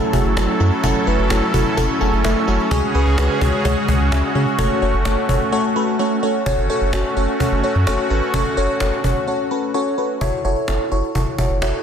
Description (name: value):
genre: synth-pop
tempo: 128 BPM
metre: 4/4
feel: straight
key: F# minor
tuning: A4 = 441 Hz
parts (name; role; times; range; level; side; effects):
- FM electric piano with soft pad layer; accompaniment; 0.0-11.8 s; G#3 to A5; -20 LUFS; left 1 dB; chorus, phaser
- brassy analog pad; sustained chords; 0.0-10.2 s; C#3 to A4; -22 LUFS; right 1 dB; chorus
- round analog bass; bass; 0.1-11.7 s; F#1 to C#3; -19 LUFS; equal; none
- cajon; drums; 0.1-11.7 s; none; -25 LUFS; equal; none
room: moderate lush hall reverb, RT60 2.2 s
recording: dense, heavily limited modern master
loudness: -16 LUFS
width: side -8 dB against mid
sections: 0.0-6.5 A section; 6.5-10.2 B section; 10.2-11.8 C section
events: FM electric piano fill 1.8-2.7; silent gap 5.5-6.5; break 9.3-10.2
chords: 0.0 F#m7; 2.7 C#sus4; 4.6 F#m; 10.2 F#m7